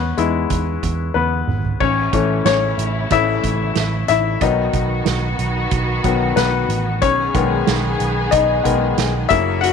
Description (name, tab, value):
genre	piano-driven pop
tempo	92 BPM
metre	4/4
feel	straight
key	unclear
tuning	A4 = 436 Hz
part	bright upright piano	accompaniment	0.0-9.7 s	C#3 to F#5	-18 LUFS	left 9 dB	none
part	vintage muted picked electric bass	bass	0.0-9.7 s	F#1 to E2	-22 LUFS	right 2 dB	none
part	soft-mallet drum kit	drums	0.2-9.7 s	crash cymbal, hi-hat, kick drum, snare drum, toms	-23 LUFS	right 6 dB	none
part	muted studio string section	sustained chords	1.8-9.7 s	C#3 to G#4	-25 LUFS	equal	none
room	light reverb, studio ambience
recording	1960s-style stereo with parts hard left and right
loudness	-16 LUFS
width	side -6 dB against mid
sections	0.0-1.8 A section; 1.8-9.7 B section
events	upright piano solo 0.0-1.8, 1.8-9.7; drum fill 1.2-1.8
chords	0.0 E; 1.8 A; 4.4 B; 7.0 G#m/B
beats	0.50 1.15 | 1.81 2.46 3.11 3.76 | 4.42 5.07 5.72 6.37 | 7.03 7.68 8.33 8.98 | 9.63